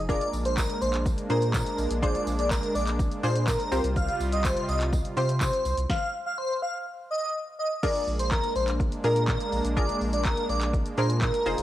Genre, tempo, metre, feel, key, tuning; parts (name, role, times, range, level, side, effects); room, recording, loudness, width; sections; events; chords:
dance-pop; 124 BPM; 4/4; straight; A4 = 440 Hz
warm analog pad; sustained chords; 0.0-11.6 s; C3 to Ab4; -33 LUFS; equal; chorus, sidechain pumping, cassette tape
round analog bass; bass; 0.0-11.6 s; F1 to C3; -28 LUFS; equal; sidechain pumping
airy dreamy lead; melody; 0.1-11.6 s; Bb4 to F5; -28 LUFS; equal; chorus, sidechain pumping, cassette tape, analog delay
punchy chord stab; accompaniment; 0.1-11.6 s; C4 to C5; -32 LUFS; equal; chorus, cassette tape
punchy analog drum machine; drums; 0.1-11.6 s; crash cymbal, handclaps, hi-hat, kick drum, shaker, snare drum; -30 LUFS; equal; cassette tape
tambourine; percussion; 0.1-5.8 s; -44 LUFS; right 5 dB
little or no reverb; home recording on cassette; -24 LUFS; side -13 dB against mid
0.0-7.8 A section; 7.8-11.6 A section
drop 0.0-7.8, 7.8-11.6; stop 5.9-7.8
0.1 Bb7; 3.7 Csus4; 7.8 Bb7